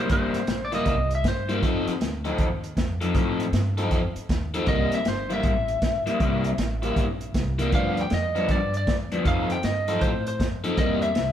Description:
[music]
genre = electric blues shuffle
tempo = 157 BPM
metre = 4/4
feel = swing 64% on 8ths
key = C mixolydian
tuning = A4 = 440 Hz
[part]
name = lightly driven lead guitar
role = melody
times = 0.0-1.6, 4.7-11.3 s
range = C5 to G5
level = -28 LUFS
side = equal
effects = none
[part]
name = overdriven semi-hollow guitar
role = riff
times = 0.0-11.1 s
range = G2 to A4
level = -27 LUFS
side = left 2 dB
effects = phaser
[part]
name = upright bass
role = bass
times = 0.1-11.3 s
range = G1 to A2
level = -29 LUFS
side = equal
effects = none
[part]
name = vintage drum kit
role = drums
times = 0.1-11.3 s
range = hi-hat, kick drum, snare drum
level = -27 LUFS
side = equal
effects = none
[sound]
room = moderate stone room reverb, RT60 1.5 s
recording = band playing live in one room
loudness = -22 LUFS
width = side -10 dB against mid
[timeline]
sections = 0.0-11.3 A section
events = none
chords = 0.0 C7; 1.6 F7; 4.7 C7; 7.7 G7; 9.3 F7; 10.8 C7

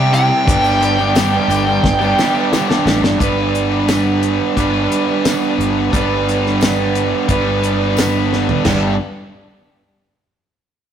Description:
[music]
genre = classic rock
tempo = 88 BPM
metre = 4/4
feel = straight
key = G major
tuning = A4 = 442 Hz
[part]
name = nasal lead guitar with a parked wah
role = melody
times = 0.0-2.5 s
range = G5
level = -17 LUFS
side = right 1 dB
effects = overdrive
[part]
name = crunchy overdriven guitar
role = riff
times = 0.0-8.9 s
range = G2 to B4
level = -17 LUFS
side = right 5 dB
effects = none
[part]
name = tight distorted guitar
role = riff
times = 0.0-8.9 s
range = G2 to B4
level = -20 LUFS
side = left 8 dB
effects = distortion
[part]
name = fingered electric bass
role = bass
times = 0.0-9.0 s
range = G1 to C3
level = -20 LUFS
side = left 1 dB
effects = none
[part]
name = damped 70s drum kit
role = drums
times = 0.1-8.8 s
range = crash cymbal, hi-hat, kick drum, snare drum, tambourine, toms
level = -18 LUFS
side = left 1 dB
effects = none
[part]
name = tambourine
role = percussion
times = 0.1-9.0 s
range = none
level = -36 LUFS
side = right 5 dB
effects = none
[sound]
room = moderate stone room reverb, RT60 1.4 s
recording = rough rehearsal-room recording, tube saturation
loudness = -13 LUFS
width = side -9 dB against mid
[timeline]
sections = 0.0-3.2 A section; 3.2-8.7 B section; 8.7-10.9 C section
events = drum fill 1.8-3.2, 8.3-8.7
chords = 0.5 G

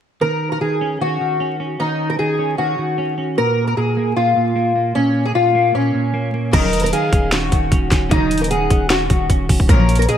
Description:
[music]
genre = hip hop, trap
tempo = 152 BPM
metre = 4/4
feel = half-time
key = Eb minor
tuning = A4 = 440 Hz
[part]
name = fingerpicked old ladder-braced acoustic guitar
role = melody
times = 0.2-10.2 s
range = Db4 to Bb4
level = -18 LUFS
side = left 2 dB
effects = analog chorus
[part]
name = clean electric guitar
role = accompaniment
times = 0.2-10.2 s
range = Bb2 to Db4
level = -22 LUFS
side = right 2 dB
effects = lush chorus
[part]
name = breathy flute-like synth lead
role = second line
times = 6.5-10.2 s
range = Db5 to Gb5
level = -27 LUFS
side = right 2 dB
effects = chorus, ping-pong delay
[part]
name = dark studio string section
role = stabs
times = 6.5-10.1 s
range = Bb2 to Gb3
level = -24 LUFS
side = left 5 dB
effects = none
[part]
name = long sustained 808-style bass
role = bass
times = 6.5-10.1 s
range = Eb1 to Bb1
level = -19 LUFS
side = equal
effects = none
[part]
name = trap drum kit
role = drums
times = 6.5-10.2 s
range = crash cymbal, hi-hat, kick drum, snare drum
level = -18 LUFS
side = equal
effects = none
[sound]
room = moderate plate reverb, RT60 1.9 s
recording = bright 1980s-style digital production, vinyl crackle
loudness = -15 LUFS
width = side -9 dB against mid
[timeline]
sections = 0.2-6.5 A section; 6.5-10.2 B section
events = none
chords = 0.2 Ebm7; 3.4 N.C.; 6.5 Ebm7

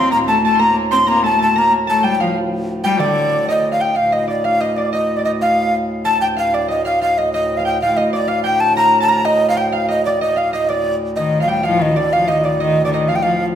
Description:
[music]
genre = medieval dance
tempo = 125 BPM (dotted quarters)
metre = 6/8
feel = straight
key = D phrygian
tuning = A4 = 440 Hz
[part]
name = breathy mellow tenor recorder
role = melody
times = 0.0-13.4 s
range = D5 to C6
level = -16 LUFS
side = equal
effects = none
[part]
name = concert harp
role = second line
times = 0.0-13.6 s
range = C5 to C6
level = -24 LUFS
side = right 4 dB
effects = none
[part]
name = warm viola da gamba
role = second line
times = 0.0-3.6, 11.2-13.4 s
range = D3 to C4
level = -20 LUFS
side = left 2 dB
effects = none
[part]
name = hand-pumped harmonium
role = drone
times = 0.0-13.6 s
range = D2 to A2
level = -23 LUFS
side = equal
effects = none
[sound]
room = wet recital hall reverb, RT60 1.4 s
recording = minimal, uncompressed stereo recording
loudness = -14 LUFS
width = side -9 dB against mid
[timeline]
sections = 0.0-4.0 A section; 4.0-11.6 B section; 11.6-13.6 B section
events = none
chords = none

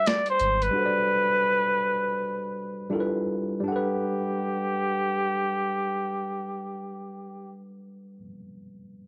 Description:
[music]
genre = R&B, neo-soul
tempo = 77-88 BPM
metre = 4/4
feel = swing 62% on 16ths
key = G major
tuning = A4 = 439 Hz
[part]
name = clear flugelhorn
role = melody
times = 0.0-7.5 s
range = G4 to D5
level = -28 LUFS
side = equal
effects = slapback echo
[part]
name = tine electric piano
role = accompaniment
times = 0.0-9.1 s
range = G3 to F#5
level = -33 LUFS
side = equal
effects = overdrive
[part]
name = boom bap sampler-style drum kit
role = drums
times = 0.1-0.7 s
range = hi-hat, snare drum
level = -31 LUFS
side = equal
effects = overdrive
[part]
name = warm sub bass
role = bass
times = 0.4-0.7 s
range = Ab1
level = -31 LUFS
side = equal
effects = none
[sound]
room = light reverb, small room ambience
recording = none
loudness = -26 LUFS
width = mono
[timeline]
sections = 0.0-3.7 A section; 3.7-6.8 B section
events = slowing down 0.0-3.7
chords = 0.0 Gmaj7; 2.9 G13; 3.7 Gmaj7

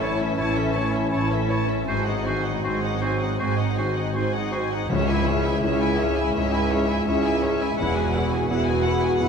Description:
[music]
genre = cinematic, emotional film score for orchestra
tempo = 82 BPM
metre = 4/4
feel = rubato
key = C# minor from 4.9 s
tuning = A4 = 439 Hz
[part]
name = warm studio violin section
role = melody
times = 0.0-9.3 s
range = E5 to A5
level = -30 LUFS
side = left 4 dB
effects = none
[part]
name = bright oboe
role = second line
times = 0.0-4.7 s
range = B#4 to C#5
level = -34 LUFS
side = right 3 dB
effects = none
[part]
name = warm chamber violin section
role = second line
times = 0.0-9.3 s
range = G#4 to E5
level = -33 LUFS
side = left 2 dB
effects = none
[part]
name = warm clarinet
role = second line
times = 0.0-4.7 s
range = E4 to F#4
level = -34 LUFS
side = left 1 dB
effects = none
[part]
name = warm baby grand piano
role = accompaniment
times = 0.0-9.3 s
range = C#2 to C#5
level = -28 LUFS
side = left 1 dB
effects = none
[part]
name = warm studio viola section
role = accompaniment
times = 0.0-9.3 s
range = B#3 to F#4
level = -31 LUFS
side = right 1 dB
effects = none
[part]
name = mellow French horn section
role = sustained chords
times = 0.0-4.5 s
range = E3 to C#4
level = -32 LUFS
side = left 1 dB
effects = none
[part]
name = concert harp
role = arpeggios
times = 0.0-9.3 s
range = G#2 to C#6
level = -33 LUFS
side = left 4 dB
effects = none
[part]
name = rich chamber double bass section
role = bass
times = 0.0-9.3 s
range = E1 to C#2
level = -29 LUFS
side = right 2 dB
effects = none
[part]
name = rich studio cello section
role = bass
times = 0.0-9.3 s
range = C#2 to A2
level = -28 LUFS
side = right 3 dB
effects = none
[part]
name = timpani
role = percussion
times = 4.9-5.9 s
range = C#3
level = -32 LUFS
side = left 3 dB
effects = none
[sound]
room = wet cathedral reverb, RT60 5.1 s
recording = recorded in a church or concert hall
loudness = -21 LUFS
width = side -6 dB against mid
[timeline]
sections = 0.0-4.9 A section; 4.9-9.3 B section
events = none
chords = 0.0 A; 1.9 G#7; 4.9 C#m; 7.8 Eadd9

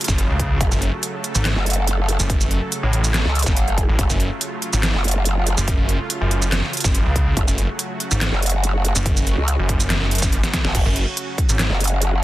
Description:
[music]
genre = heavy wobble dubstep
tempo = 142 BPM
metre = 4/4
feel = half-time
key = F# harmonic minor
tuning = A4 = 439 Hz
[part]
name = supersaw pad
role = sustained chords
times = 0.0-12.2 s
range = C#3 to A4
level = -29 LUFS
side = right 1 dB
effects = sidechain pumping
[part]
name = dubstep drum kit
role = drums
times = 0.0-12.1 s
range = crash cymbal, handclaps, hi-hat, shaker, snare drum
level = -23 LUFS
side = right 1 dB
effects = studio reverb
[part]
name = snarling distorted saw bass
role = bass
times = 0.1-11.7 s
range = F#1 to C#2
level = -20 LUFS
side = equal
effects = distortion, overdrive
[part]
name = electronic kick drum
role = drums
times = 0.1-11.5 s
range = none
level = -20 LUFS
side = equal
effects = studio reverb
[part]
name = growl bass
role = bass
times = 0.6-12.2 s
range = F#1 to C#2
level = -19 LUFS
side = equal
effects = chorus, overdrive
[sound]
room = little or no reverb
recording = dense, heavily limited modern master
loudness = -17 LUFS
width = side -16 dB against mid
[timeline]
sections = 0.0-10.7 A section; 10.7-12.2 A section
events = drop 0.0-10.7, 10.7-12.2; drum fill 10.4-10.7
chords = 0.0 F#m; 10.7 F#5

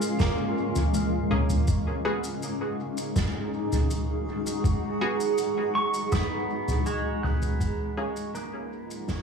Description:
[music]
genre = ambient dub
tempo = 81 BPM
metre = 4/4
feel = straight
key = unclear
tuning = A4 = 440 Hz
[part]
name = granular cloud pad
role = sustained chords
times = 0.0-9.2 s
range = G#3 to F#5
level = -29 LUFS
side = right 1 dB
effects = built-in reverb
[part]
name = pedal steel guitar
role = arpeggios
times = 0.0-9.2 s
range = G#3 to F#6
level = -32 LUFS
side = right 1 dB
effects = dub echo
[part]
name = soft-mallet drum kit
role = drums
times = 0.0-9.2 s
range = shaker, snare drum, toms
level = -29 LUFS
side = equal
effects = dub echo
[part]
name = electronic kick drum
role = drums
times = 0.2-9.2 s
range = none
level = -26 LUFS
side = equal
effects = none
[part]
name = filtered dub chord stab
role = stabs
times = 1.3-8.1 s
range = A#3 to G#4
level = -33 LUFS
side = left 1 dB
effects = wide subtle chorus, dub echo
[sound]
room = light reverb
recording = studio ambience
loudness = -25 LUFS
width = side -6 dB against mid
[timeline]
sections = 0.0-9.2 A section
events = fade-out 5.6-9.2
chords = 0.0 A#m7; 1.7 G#m7; 7.6 A#m7

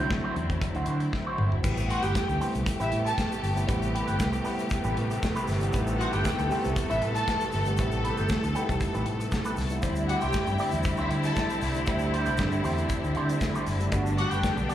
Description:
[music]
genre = disco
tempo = 117 BPM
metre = 4/4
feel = straight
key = A dorian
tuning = A4 = 440 Hz
[part]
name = electric guitar with an envelope filter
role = accompaniment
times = 0.0-14.7 s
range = C4 to D5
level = -35 LUFS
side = right 3 dB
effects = wah, slapback echo
[part]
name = mellow tine electric piano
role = accompaniment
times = 0.0-14.7 s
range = B2 to C5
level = -34 LUFS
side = left 2 dB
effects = none
[part]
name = clear studio string section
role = sustained chords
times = 0.0-14.7 s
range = C3 to A4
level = -31 LUFS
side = right 1 dB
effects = none
[part]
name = fingered electric bass with an envelope filter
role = bass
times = 0.0-14.7 s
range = F#1 to D3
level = -29 LUFS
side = equal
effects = none
[part]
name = modern studio drum kit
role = drums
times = 0.1-14.7 s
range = crash cymbal, hi-hat, kick drum, snare drum, toms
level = -32 LUFS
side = equal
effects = none
[part]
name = tube shaker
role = percussion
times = 1.6-14.7 s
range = none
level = -49 LUFS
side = right 4 dB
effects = none
[part]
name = dark studio string section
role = second line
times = 1.9-14.7 s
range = E4 to A5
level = -31 LUFS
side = left 1 dB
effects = slapback echo
[sound]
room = light reverb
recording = live gig heard through the venue's PA, club reverb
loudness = -25 LUFS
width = side -11 dB against mid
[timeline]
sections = 0.0-1.6 A section; 1.6-14.7 B section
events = drum fill 1.1-1.6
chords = 0.0 D9; 1.6 Am9; 9.8 D9sus4; 13.9 Gmaj7

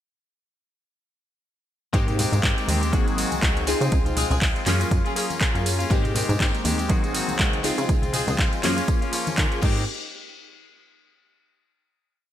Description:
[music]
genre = filtered disco house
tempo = 121 BPM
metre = 4/4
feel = swing 57% on 16ths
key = Ab major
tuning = A4 = 439 Hz
[part]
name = funky polysynth comp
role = accompaniment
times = 1.9-9.8 s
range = F3 to Ab4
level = -28 LUFS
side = equal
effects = chorus, phaser, sidechain pumping
[part]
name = direct-recorded clean electric guitar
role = riff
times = 1.9-9.8 s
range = Eb3 to G4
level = -30 LUFS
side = left 5 dB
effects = sidechain pumping
[part]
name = plucky analog bass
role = bass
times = 1.9-9.9 s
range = Ab1 to Eb3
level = -26 LUFS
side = equal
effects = tube saturation, sidechain pumping
[part]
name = electronic kick drum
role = drums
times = 1.9-9.7 s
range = none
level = -23 LUFS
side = equal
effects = none
[part]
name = house drum kit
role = drums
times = 1.9-9.7 s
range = crash cymbal, handclaps, hi-hat, ride cymbal, tambourine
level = -27 LUFS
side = equal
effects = overdrive, sidechain pumping on hats, sidechain pumping on perc, sidechain pumping on cymbals
[part]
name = tambourine and congas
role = percussion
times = 1.9-9.9 s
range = none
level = -35 LUFS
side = left 2 dB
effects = none
[part]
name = warm horn section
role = melody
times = 4.2-8.3 s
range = Ab4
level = -34 LUFS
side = left 3 dB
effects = sidechain pumping, ping-pong delay
[sound]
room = light reverb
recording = bright 1980s-style digital production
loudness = -20 LUFS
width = side -11 dB against mid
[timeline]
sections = 1.9-9.9 drop; 9.9-11.9 final hit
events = drop 1.9-9.9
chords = 1.9 Abmaj7; 2.9 Ab7; 3.7 Dbmaj7; 4.7 Gbmaj7; 5.9 Abmaj7; 6.9 Ab7; 7.6 Dbmaj7; 8.6 Gbmaj7; 9.6 Abmaj7; 9.9 N.C.

